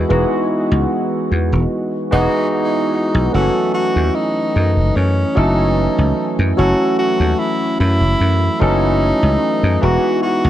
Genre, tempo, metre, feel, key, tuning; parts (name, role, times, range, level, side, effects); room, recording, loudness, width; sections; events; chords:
vaporwave; 74 BPM; 4/4; straight; F# dorian; A4 = 440 Hz
barky tine electric piano; accompaniment; 0.0-10.5 s; E3 to D#5; -17 LUFS; equal; analog chorus, analog delay
dry thumbed slap bass; bass; 0.0-10.5 s; E1 to F#2; -16 LUFS; equal
breathy tenor saxophone; melody; 2.1-10.5 s; C#4 to F#4; -20 LUFS; equal; tape echo
light reverb, small room ambience; cassette tape; -14 LUFS; side -12 dB against mid
0.0-3.3 A section; 3.3-10.5 B section
0.0 Emaj9; 3.3 F#m7; 9.8 Emaj9